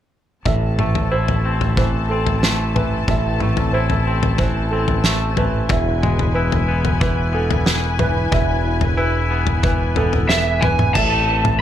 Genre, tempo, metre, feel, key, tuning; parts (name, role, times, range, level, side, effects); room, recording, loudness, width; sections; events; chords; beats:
post-rock; 92 BPM; 4/4; straight; A harmonic minor; A4 = 440 Hz
rich symphonic string section; sustained chords; 0.5-11.6 s; E3 to A5; -27 LUFS; left 2 dB
felt-muted upright piano; arpeggios; 0.5-11.6 s; A4 to E5; -26 LUFS; right 3 dB; digital delay
twangy electric guitar; arpeggios; 0.5-11.6 s; E2 to E4; -24 LUFS; left 2 dB; digital delay
growling fingered electric bass; bass; 0.5-11.6 s; E1 to A1; -20 LUFS; equal; overdrive
loose indie drum kit; drums; 0.5-11.6 s; crash cymbal, kick drum, snare drum, toms; -20 LUFS; equal
lead guitar through a small cranked amp; melody; 10.3-11.6 s; E5 to A5; -18 LUFS; equal; overdrive, digital delay
light reverb; -16 LUFS; side -10 dB against mid
0.5-11.0 A section
0.5 Am; 5.7 E; 11.0 Am
| 0.46 1.12 1.77 2.43 | 3.08 3.74 4.39 5.05 | 5.71 6.36 7.02 7.67 | 8.33 8.98 9.64 10.30 | 10.95 11.61